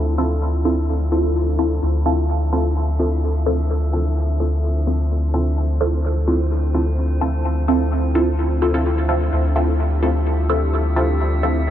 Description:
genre	techno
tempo	128 BPM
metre	4/4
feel	straight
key	D minor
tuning	A4 = 440 Hz
part	dark analog pad	sustained chords	0.0-11.7 s	D4 to C5	-29 LUFS	equal	chorus
part	soft dub sub bass	bass	0.0-11.7 s	D2	-19 LUFS	equal	none
part	metallic inharmonic drone	texture	0.1-11.7 s	C4 to E5	-36 LUFS	equal	chorus, built-in reverb, phaser
part	filtered dub chord stab	stabs	0.2-11.6 s	C4 to A4	-21 LUFS	equal	phaser, dub echo
room	light reverb, digital ambience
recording	dark, warm production, low-pass filter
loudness	-17 LUFS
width	side -11 dB against mid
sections	0.0-11.7 A section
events	filter sweep on synth stab 0.0-11.7; filter sweep 0.0-11.7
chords	0.0 Dm9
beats	0.42 0.89 1.35 | 1.82 2.29 2.76 3.23 | 3.70 4.17 4.64 5.11 | 5.57 6.04 6.51 6.98 | 7.45 7.92 8.39 8.86 | 9.32 9.79 10.26 10.73 | 11.20 11.67

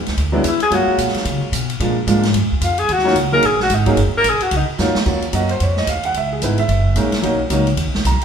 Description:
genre	jazz, small-group swing and bop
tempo	221 BPM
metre	4/4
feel	swing 60% on 8ths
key	Eb minor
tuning	A4 = 443 Hz
part	upright bass	bass	0.0-8.2 s	Gb1 to Db3	-19 LUFS	equal	none
part	swinging big-band drum kit	drums	0.1-8.2 s	crash cymbal, hi-hat, kick drum, ride cymbal, snare drum	-24 LUFS	equal	none
part	clear concert grand piano	accompaniment	0.3-8.2 s	F3 to A#5	-20 LUFS	right 1 dB	none
part	breathy tenor saxophone	melody	0.5-4.6 s	Eb4 to Bb4	-16 LUFS	left 1 dB	none
room	wet large studio reverb, RT60 1.2 s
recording	band playing live in one room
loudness	-15 LUFS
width	side -7 dB against mid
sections	0.0-5.1 A section; 5.1-8.2 A section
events	tenor saxophone solo 0.0-5.1; drum fill 4.8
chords	0.0 E9; 0.7 Gbmaj7; 1.8 Bb7; 2.9 Ebm7; 6.2 Dbm7; 6.7 Gb7; 7.2 Bmaj7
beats	0.17 0.45 | 0.72 0.99 1.26 1.53 | 1.81 2.08 2.35 2.62 | 2.89 3.16 3.44 3.71 | 3.98 4.25 4.52 4.79 | 5.06 5.34 5.61 5.88 | 6.15 6.42 6.70 6.97 | 7.24 7.51 7.79 8.06

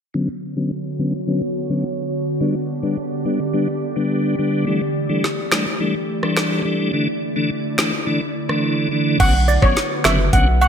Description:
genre	dancehall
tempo	106 BPM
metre	4/4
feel	straight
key	B minor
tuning	A4 = 440 Hz
part	tonewheel organ	accompaniment	0.1-10.5 s	D3 to D4	-21 LUFS	left 1 dB	chorus vibrato, stopped rotary speaker, low-pass filter
part	glassy FM pad	sustained chords	0.4-10.7 s	D3 to D5	-24 LUFS	right 1 dB	ensemble chorus, built-in reverb, sidechain pumping, low-pass filter
part	island pop drum kit	drums	5.2-10.5 s	crash cymbal, finger snaps, hi-hat, kick drum, rim click, snare drum	-20 LUFS	equal	gated reverb
part	steel pan	melody	9.2-10.7 s	C#5 to F#5	-19 LUFS	right 1 dB	digital delay
part	warm sub bass	bass	9.2-10.7 s	F#1 to B1	-18 LUFS	equal	none
part	woodblock and cabasa	percussion	9.2-10.7 s	none	-28 LUFS	right 8 dB	none
room	moderate lush hall reverb, RT60 2.2 s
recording	bright 1980s-style digital production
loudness	-17 LUFS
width	side -7 dB against mid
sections	0.1-9.2 A section; 9.2-10.7 B section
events	filter sweep 0.1-9.2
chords	0.1 Bmadd9; 2.4 G; 4.7 A7sus4; 6.9 Dsus2; 9.2 Bmadd9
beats	| 0.14 0.71 1.28 1.84 | 2.41 2.98 3.54 4.11 | 4.67 5.24 5.81 6.37 | 6.94 7.50 8.07 8.64 | 9.20 9.77 10.33

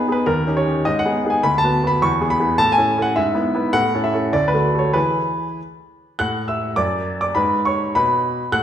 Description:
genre	classical-period piano sonatina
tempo	103 BPM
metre	2/4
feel	straight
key	A major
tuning	A4 = 440 Hz
part	clear baby grand piano	solo	0.0-8.6 s	D2 to F#6	-16 LUFS	equal	none
room	wet recital hall reverb, RT60 1.5 s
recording	minimal, uncompressed stereo recording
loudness	-16 LUFS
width	side -10 dB against mid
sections	0.0-6.2 A section; 6.2-8.6 B section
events	none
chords	0.3 D#7; 0.9 G#m; 1.4 Bm/D; 2.0 E; 2.6 A; 3.2 E/G#; 3.8 A; 4.3 D; 5.0 E; 6.2 A5; 6.8 D/F#; 7.4 G#madd11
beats	| 0.28 0.85 | 1.44 2.01 | 2.59 3.17 | 3.75 4.34 | 4.96 5.58 | 6.18 6.77 | 7.35 7.94 | 8.52

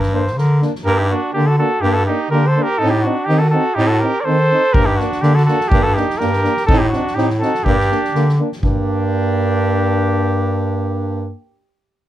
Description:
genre	balkan folk, Balkan brass band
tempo	124 BPM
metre	2/4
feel	swing 54% on 16ths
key	G harmonic minor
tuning	A4 = 439 Hz
part	clear bass clarinet	bass	0.0-11.3 s	G2 to Eb3	-17 LUFS	equal	none
part	soft-mallet drum kit	percussion	0.0-0.8, 4.7-8.9 s	kick drum, snare drum	-20 LUFS	equal	none
part	clear flugelhorn	melody	0.1-11.3 s	F#4 to D5	-20 LUFS	equal	plate reverb
part	warm euphonium	accompaniment	0.1-11.3 s	Bb3 to C4	-24 LUFS	right 5 dB	none
part	warm trombone	accompaniment	0.1-11.3 s	D4 to Eb4	-26 LUFS	left 7 dB	none
part	warm trumpet	second line	0.9-11.3 s	D4 to Bb4	-24 LUFS	right 5 dB	none
room	light reverb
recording	none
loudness	-14 LUFS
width	side -13 dB against mid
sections	0.9-8.6 A section; 8.6-10.6 B section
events	none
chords	0.0 Gm; 2.8 Adim; 4.8 Gm; 6.7 Adim; 7.7 Gm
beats	0.37 | 0.86 1.35 | 1.84 2.32 | 2.81 3.30 | 3.78 4.27 | 4.75 5.24 | 5.72 6.21 | 6.69 7.18 | 7.66 8.14 | 8.63 9.11 | 9.60 10.08

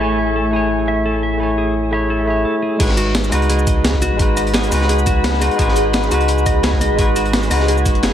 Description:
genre	liquid drum and bass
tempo	172 BPM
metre	4/4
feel	swing 53% on 16ths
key	G# phrygian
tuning	A4 = 435 Hz
part	barky tine electric piano	accompaniment	0.0-8.1 s	G#3 to G#5	-19 LUFS	equal	analog delay
part	glassy FM pad	sustained chords	0.0-8.1 s	A3 to C#6	-23 LUFS	left 1 dB	ensemble chorus, built-in reverb, sidechain pumping
part	clean electric guitar	arpeggios	0.0-8.1 s	F#4 to E5	-24 LUFS	right 1 dB	vibrato effect, diffuse ambient delay
part	warm sub bass	bass	0.0-8.1 s	F#1 to C#2	-20 LUFS	equal	none
part	breakbeat sampler-style drum kit	drums	2.8-8.1 s	cabasa, crash cymbal, hi-hat, snare drum	-22 LUFS	equal	low-pass filter on hats, low-pass filter on cymbals, low-pass filter on perc, low-pass filter on snare, low-pass filter on room
part	crunchy breakbeat drum kit	drums	2.8-8.1 s	hi-hat, snare drum	-27 LUFS	equal	high-pass filter on hats, high-pass filter on snare, high-pass filter on room
part	electronic kick drum	drums	2.8-7.9 s	none	-18 LUFS	equal	none
room	moderate plate reverb, RT60 1.3 s, digital ambience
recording	dreamy mix soaked in reverb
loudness	-14 LUFS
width	side -10 dB against mid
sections	0.0-2.8 A section; 2.8-8.1 B section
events	drop 2.8-8.1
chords	0.0 Amaj7; 2.8 G#m7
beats	| 0.01 0.36 0.71 1.05 | 1.40 1.75 2.10 2.45 | 2.80 3.15 3.50 3.85 | 4.20 4.54 4.89 5.24 | 5.59 5.94 6.29 6.64 | 6.99 7.33 7.68 8.03

